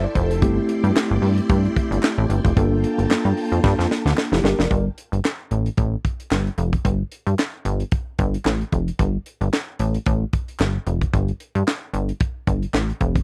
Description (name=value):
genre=early-eighties boogie funk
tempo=112 BPM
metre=4/4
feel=swing 56% on 16ths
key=unclear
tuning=A4 = 441 Hz
part: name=mellow tine electric piano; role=accompaniment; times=0.0-4.8 s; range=A3 to D5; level=-26 LUFS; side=equal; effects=none
part: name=phased string machine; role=sustained chords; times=0.0-4.7 s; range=Bb3 to C6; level=-35 LUFS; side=equal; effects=ensemble chorus, phaser
part: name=plucky analog bass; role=bass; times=0.0-13.2 s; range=F1 to G2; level=-23 LUFS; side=equal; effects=none
part: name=tight funk drum kit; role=drums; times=0.2-13.2 s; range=handclaps, hi-hat, kick drum, snare drum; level=-24 LUFS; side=equal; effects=none
part: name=group handclap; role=percussion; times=1.0-12.9 s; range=none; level=-35 LUFS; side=equal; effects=none
room=little or no reverb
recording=dry, close 1970s-style studio recording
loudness=-21 LUFS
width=mono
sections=0.0-4.7 A section; 4.7-13.2 B section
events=drum fill 3.6-4.7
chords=0.4 D9sus4/G; 2.6 Gm9; 4.7 Fadd9